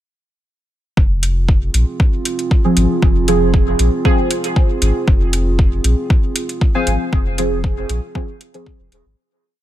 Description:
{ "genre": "dub techno", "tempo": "117 BPM", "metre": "4/4", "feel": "straight", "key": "F minor", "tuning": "A4 = 441 Hz", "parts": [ { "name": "dark analog pad", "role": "sustained chords", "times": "1.0-9.1 s", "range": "C4 to Ab4", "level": "-24 LUFS", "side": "right 3 dB", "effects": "chorus, vintage 12-bit sampler grit, sidechain pumping" }, { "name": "pure sine sub bass", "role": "bass", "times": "1.0-9.1 s", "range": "Eb1 to Bb1", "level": "-17 LUFS", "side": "equal", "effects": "sidechain pumping" }, { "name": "electronic kick drum", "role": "drums", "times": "1.0-8.8 s", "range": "none", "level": "-14 LUFS", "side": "equal", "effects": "overdrive" }, { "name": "electronic hi-hat", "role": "drums", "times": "1.2-9.0 s", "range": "none", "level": "-22 LUFS", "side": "right 1 dB", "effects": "overdrive" }, { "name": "deep mellow chord stab", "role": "stabs", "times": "2.6-8.8 s", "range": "F3 to Ab4", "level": "-19 LUFS", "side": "right 1 dB", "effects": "chorus, phaser, sidechain pumping, dub echo" }, { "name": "warbly lo-fi synth keys", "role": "riff", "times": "6.7-6.9 s", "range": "C5 to Ab5", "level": "-26 LUFS", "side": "left 2 dB", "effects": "chorus, sidechain pumping, dub echo" } ], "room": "little or no reverb", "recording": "none", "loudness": "-14 LUFS", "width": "side -13 dB against mid", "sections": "1.0-9.2 groove", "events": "fade-out 6.4-9.2", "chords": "1.0 Fm", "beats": "| 0.97 1.49 2.00 2.51 | 3.02 3.54 4.05 4.56 | 5.08 5.59 6.10 6.61 | 7.13 7.64 8.15 8.66" }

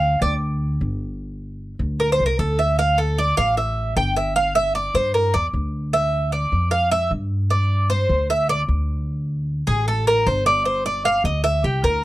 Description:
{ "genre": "latin, Cuban son and guajira", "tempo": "152 BPM", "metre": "4/4", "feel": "straight", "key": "D minor", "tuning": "A4 = 440 Hz", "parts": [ { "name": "Cuban tres", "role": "arpeggios", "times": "0.0-12.0 s", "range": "G4 to G5", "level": "-19 LUFS", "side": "right 1 dB", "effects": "none" }, { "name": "upright bass", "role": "bass", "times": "0.0-12.0 s", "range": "G1 to G2", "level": "-22 LUFS", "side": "equal", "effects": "none" } ], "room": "little or no reverb", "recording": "dry, close 1970s-style studio recording", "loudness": "-18 LUFS", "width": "side -16 dB against mid", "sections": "0.0-12.0 A section", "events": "Cuban tres solo 0.0-12.0", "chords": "0.0 Dm; 1.2 G5; 2.8 D5; 4.4 G5; 5.9 Dm; 7.5 G5; 9.1 D5; 10.7 G5", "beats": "0.03 0.42 0.81 | 1.21 1.60 1.99 2.39 | 2.78 3.18 3.57 3.96 | 4.36 4.75 5.14 5.54 | 5.93 6.33 6.72 7.11 | 7.51 7.90 8.29 8.69 | 9.08 9.48 9.87 10.26 | 10.66 11.05 11.45 11.84" }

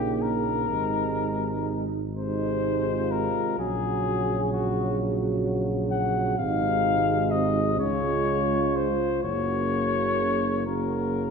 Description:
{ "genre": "classical, hymn-like piece for brass band", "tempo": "42 BPM (dotted quarters)", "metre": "6/8", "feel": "rubato", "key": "unclear", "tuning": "A4 = 440 Hz", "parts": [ { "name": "warm cornet", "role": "melody", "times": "0.0-11.3 s", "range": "Gb4 to Gb5", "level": "-28 LUFS", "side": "left 6 dB", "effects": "none" }, { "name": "warm French horn section", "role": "second line", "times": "0.0-11.3 s", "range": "Eb4 to Gb4", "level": "-32 LUFS", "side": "right 8 dB", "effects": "none" }, { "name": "mellow trombone", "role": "accompaniment", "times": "0.0-11.3 s", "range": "C3 to Db3", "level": "-32 LUFS", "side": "right 5 dB", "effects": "none" }, { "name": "warm euphonium", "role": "accompaniment", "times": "0.0-11.3 s", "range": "Gb3 to Bb3", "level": "-31 LUFS", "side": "left 1 dB", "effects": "none" }, { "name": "dark tuba", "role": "bass", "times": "0.0-11.3 s", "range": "Gb1 to Db2", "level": "-30 LUFS", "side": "right 1 dB", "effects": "none" } ], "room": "wet concert hall reverb, RT60 1.9 s", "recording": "minimal, uncompressed stereo recording", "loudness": "-23 LUFS", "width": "side -5 dB against mid", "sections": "0.0-11.3 A section", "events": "none", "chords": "0.0 Eb7/Bb; 0.7 Ab; 3.6 Gb/Bb; 6.4 Ab; 7.8 Db; 9.2 Gb", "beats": "| 0.69 2.15 | 3.58 4.99 | 6.38 7.80 | 9.24 10.68" }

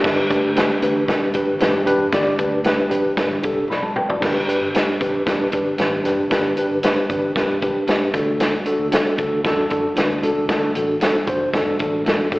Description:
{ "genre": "uptempo 1960s-style soul", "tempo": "115 BPM", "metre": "4/4", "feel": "straight", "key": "G major", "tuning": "A4 = 440 Hz", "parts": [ { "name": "mellow tine electric piano", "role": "accompaniment", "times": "0.0-12.4 s", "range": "D4 to B5", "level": "-19 LUFS", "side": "equal", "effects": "medium stereo tremolo, slapback echo" }, { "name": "vintage muted fingered electric bass", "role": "bass", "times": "0.0-12.4 s", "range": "F1 to F#2", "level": "-32 LUFS", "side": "equal", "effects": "none" }, { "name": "vintage drum kit", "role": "drums", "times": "0.0-12.4 s", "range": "crash cymbal, hi-hat, kick drum, snare drum, toms", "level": "-21 LUFS", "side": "equal", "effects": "slapback echo" }, { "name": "congas", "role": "percussion", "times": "0.6-12.4 s", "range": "none", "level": "-35 LUFS", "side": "equal", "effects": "none" } ], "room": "light reverb", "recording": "live gig heard through the venue's PA, recital hall reverb, AM radio sound", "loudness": "-17 LUFS", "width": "side -21 dB against mid", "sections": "0.0-4.2 A section; 4.2-12.4 B section", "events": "drum fill 3.7-4.2", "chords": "0.0 G; 8.1 D", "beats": "| 0.04 0.56 1.09 1.61 | 2.13 2.65 3.18 3.70 | 4.22 4.75 5.27 5.79 | 6.31 6.84 7.36 7.88 | 8.40 8.93 9.45 9.97 | 10.50 11.02 11.54 12.06" }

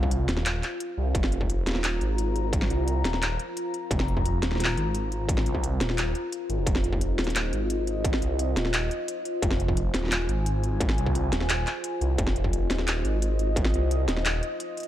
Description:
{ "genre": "half-time drum and bass", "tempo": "174 BPM", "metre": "4/4", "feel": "half-time", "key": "F minor", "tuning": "A4 = 441 Hz", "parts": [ { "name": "deep dark ambient pad", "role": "sustained chords", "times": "0.0-14.9 s", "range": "F4 to Bb5", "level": "-31 LUFS", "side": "left 1 dB", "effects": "chorus, built-in reverb, sidechain pumping" }, { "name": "phased detuned saw bass", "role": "bass", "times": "0.0-14.4 s", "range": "Eb1 to C2", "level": "-27 LUFS", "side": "equal", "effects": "phaser" }, { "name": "electronic kick drum", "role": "drums", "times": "0.0-13.6 s", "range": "none", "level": "-27 LUFS", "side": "equal", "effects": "distortion" }, { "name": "industrial drum kit", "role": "drums", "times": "0.1-14.9 s", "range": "handclaps, hi-hat, snare drum", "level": "-30 LUFS", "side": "equal", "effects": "none" } ], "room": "little or no reverb", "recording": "dry, gritty hardware recording", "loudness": "-24 LUFS", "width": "side -12 dB against mid", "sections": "0.0-14.9 A section", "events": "none", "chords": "0.0 Fm", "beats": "0.12 0.46 0.81 | 1.15 1.50 1.84 2.19 | 2.53 2.87 3.22 3.56 | 3.91 4.25 4.60 4.94 | 5.29 5.63 5.98 6.32 | 6.67 7.01 7.36 7.70 | 8.05 8.39 8.74 9.08 | 9.43 9.77 10.12 10.46 | 10.80 11.15 11.49 11.84 | 12.19 12.53 12.87 13.22 | 13.56 13.91 14.25 14.60" }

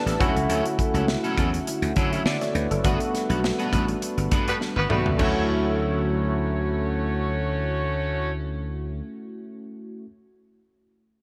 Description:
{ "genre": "polished 1980s jazz-funk pop", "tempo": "102 BPM", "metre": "4/4", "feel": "swing 54% on 16ths", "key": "D major", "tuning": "A4 = 440 Hz", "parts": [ { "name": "barky tine electric piano", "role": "accompaniment", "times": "0.0-10.1 s", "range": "A3 to A5", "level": "-30 LUFS", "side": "equal", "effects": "analog chorus" }, { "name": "warm analog pad", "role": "sustained chords", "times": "0.0-8.3 s", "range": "D3 to C#5", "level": "-36 LUFS", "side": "equal", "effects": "none" }, { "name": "electric guitar at the edge of break-up", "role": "riff", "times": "0.1-9.1 s", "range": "F#3 to B4", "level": "-34 LUFS", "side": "equal", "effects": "analog chorus" }, { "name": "slap bass", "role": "bass", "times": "0.1-9.0 s", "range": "F#1 to D3", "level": "-29 LUFS", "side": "equal", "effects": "none" }, { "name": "modern studio drum kit", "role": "drums", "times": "0.1-5.3 s", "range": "crash cymbal, hi-hat, kick drum, snare drum, toms", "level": "-30 LUFS", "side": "equal", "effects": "gated reverb" }, { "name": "clear horn section", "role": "second line", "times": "4.5-8.3 s", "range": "G3 to C#5", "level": "-32 LUFS", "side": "equal", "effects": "none" } ], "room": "light reverb, studio reverb", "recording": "bright 1980s-style digital production", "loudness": "-24 LUFS", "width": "mono", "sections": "0.0-5.2 A section; 5.2-7.5 B section", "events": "tine electric piano fill 0.0-0.5; band accent 2.8-5.2; drum fill 4.6-5.2", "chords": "0.2 Dmaj9; 2.8 Gmaj7; 5.2 Dmaj9", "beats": "| 0.50 1.09 1.67 2.26 | 2.85 3.43 4.02 4.61 | 5.19 5.78 6.37 6.96" }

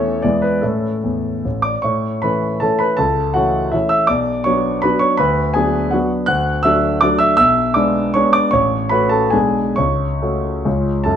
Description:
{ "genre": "classical, romantic triple-time dance for piano with dotted rhythms", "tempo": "128-174 BPM", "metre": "3/4", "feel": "rubato", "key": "A major, F# minor from 6.3 s", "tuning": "A4 = 439 Hz", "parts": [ { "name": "warm grand piano", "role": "solo", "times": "0.0-11.2 s", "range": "A1 to F#6", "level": "-14 LUFS", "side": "equal", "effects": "none" } ], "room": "moderate large studio reverb, RT60 1.4 s", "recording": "dark, warm production, nothing above 10.7 kHz", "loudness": "-14 LUFS", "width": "side -8 dB against mid", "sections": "0.0-1.8 A section; 1.8-11.1 B section", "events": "none", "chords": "0.2 E7; 0.6 A; 3.0 A/C#; 4.1 Bm; 5.2 Bm/D; 6.3 D; 7.4 G#dim/B; 8.5 F#m/A; 9.3 G#dim/B; 9.8 F#m/C#; 10.7 C#", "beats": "0.23 | 0.62 1.03 1.44 | 1.84 2.23 2.62 | 2.99 3.36 3.74 | 4.10 4.47 4.84 | 5.19 5.56 5.94 | 6.29 6.65 7.04 | 7.39 7.76 8.16 | 8.54 8.92 9.33 | 9.78 10.23 10.66 | 11.06" }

